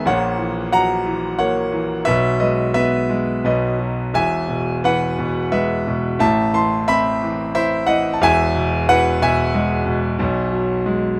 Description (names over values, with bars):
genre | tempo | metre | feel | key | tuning
classical, lyrical solo piano | 89 BPM | 3/4 | uneven beats, rubato | E major | A4 = 440 Hz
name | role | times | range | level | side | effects
bright concert grand piano | solo | 0.0-11.2 s | E1 to C6 | -19 LUFS | equal | none
room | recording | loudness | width
light reverb | none | -19 LUFS | mono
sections
0.0-11.2 A section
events
none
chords
0.1 F#7/A#; 2.1 E/B; 3.4 B; 4.1 E; 6.2 Amadd9; 8.2 E; 10.2 B5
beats
| 0.05 0.72 1.38 | 2.05 2.74 3.44 | 4.14 4.84 5.53 | 6.20 6.88 7.55 | 8.22 8.89 9.55 | 10.20 10.86